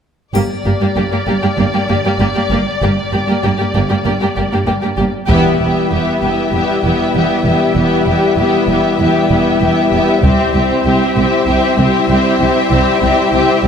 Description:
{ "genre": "cinematic, epic orchestral film score", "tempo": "97 BPM", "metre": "4/4", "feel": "straight", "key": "E minor", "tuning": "A4 = 438 Hz", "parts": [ { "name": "warm symphonic violin section", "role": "second line", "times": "0.3-13.6 s", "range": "G4", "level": "-19 LUFS", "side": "left 2 dB", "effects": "none" }, { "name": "dark studio cello section", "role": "bass", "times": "0.3-13.7 s", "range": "C2 to G2", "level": "-19 LUFS", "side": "right 2 dB", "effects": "none" }, { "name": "rich symphonic double bass section", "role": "bass", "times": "0.3-13.7 s", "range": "E1 to C2", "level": "-19 LUFS", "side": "right 2 dB", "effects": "none" }, { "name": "triangle", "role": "percussion", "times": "0.3-1.5 s", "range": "none", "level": "-36 LUFS", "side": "left 2 dB", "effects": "none" }, { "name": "warm symphonic violin section", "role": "melody", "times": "0.4-13.7 s", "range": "D5 to E5", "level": "-22 LUFS", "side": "left 4 dB", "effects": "none" }, { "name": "rich symphonic viola section", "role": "accompaniment", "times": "0.4-13.7 s", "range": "Bb3 to C4", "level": "-19 LUFS", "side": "right 1 dB", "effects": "none" }, { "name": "mellow French horn section", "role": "sustained chords", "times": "5.3-13.7 s", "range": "G3 to E4", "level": "-18 LUFS", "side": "left 3 dB", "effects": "none" }, { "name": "warm symphonic string section", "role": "sustained chords", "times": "5.3-13.7 s", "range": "E4 to E5", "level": "-19 LUFS", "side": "left 3 dB", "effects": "none" }, { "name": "solo taiko drums", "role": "drums", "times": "5.3-6.5, 10.2-11.4 s", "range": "none", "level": "-18 LUFS", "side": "equal", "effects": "none" } ], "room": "moderate scoring stage reverb, RT60 1.5 s", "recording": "none", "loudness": "-11 LUFS", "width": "side -7 dB against mid", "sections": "0.3-5.3 A section; 5.3-13.7 B section", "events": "build-up 5.3-13.7; band accent 5.3-5.9", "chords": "0.3 Gm; 5.3 Em; 10.2 C" }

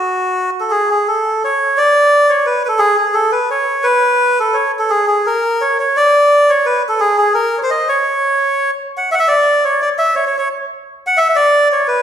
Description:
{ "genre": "musette", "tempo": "172 BPM", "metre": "3/4", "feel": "rubato", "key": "unclear", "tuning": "A4 = 437 Hz", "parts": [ { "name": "melodica", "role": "solo", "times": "0.0-12.0 s", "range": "F#4 to F#5", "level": "-12 LUFS", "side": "equal", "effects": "none" } ], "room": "wet recital hall reverb, RT60 1.5 s", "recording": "recorded in a church or concert hall", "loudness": "-12 LUFS", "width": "side -9 dB against mid", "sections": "0.7-12.0 A section", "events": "none", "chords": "none" }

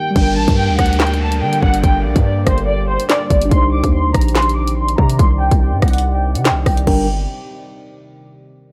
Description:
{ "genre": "hip hop, drill", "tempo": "143 BPM", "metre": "4/4", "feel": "half-time", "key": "G minor", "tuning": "A4 = 440 Hz", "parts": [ { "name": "rich studio violin section", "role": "melody", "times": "0.0-7.1 s", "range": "C5 to D6", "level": "-23 LUFS", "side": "equal", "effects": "low-pass filter, digital delay" }, { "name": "mellow tine electric piano", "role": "accompaniment", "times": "0.0-7.1 s", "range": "G3 to C5", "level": "-25 LUFS", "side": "equal", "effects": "low-pass filter" }, { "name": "deep dark ambient pad", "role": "sustained chords", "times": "0.0-7.1 s", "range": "C3 to D5", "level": "-30 LUFS", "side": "equal", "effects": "chorus, built-in reverb, low-pass filter" }, { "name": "hard-hitting 808-style bass", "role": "bass", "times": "0.2-7.3 s", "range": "G1 to D3", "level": "-20 LUFS", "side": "equal", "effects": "none" }, { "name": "drill drum kit", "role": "drums", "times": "0.2-7.0 s", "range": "crash cymbal, handclaps, hi-hat, kick drum, rim click, snare drum", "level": "-18 LUFS", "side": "equal", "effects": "none" }, { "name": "downlifter", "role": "sound effects", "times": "0.2-3.5 s", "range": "none", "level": "-32 LUFS", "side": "equal", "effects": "none" } ], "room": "little or no reverb", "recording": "none", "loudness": "-15 LUFS", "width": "mono", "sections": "0.2-6.9 A section; 6.9-8.6 B section", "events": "break 0.0; filter sweep 0.2-6.9", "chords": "0.2 Gm; 3.5 Cmadd9; 6.9 Gm" }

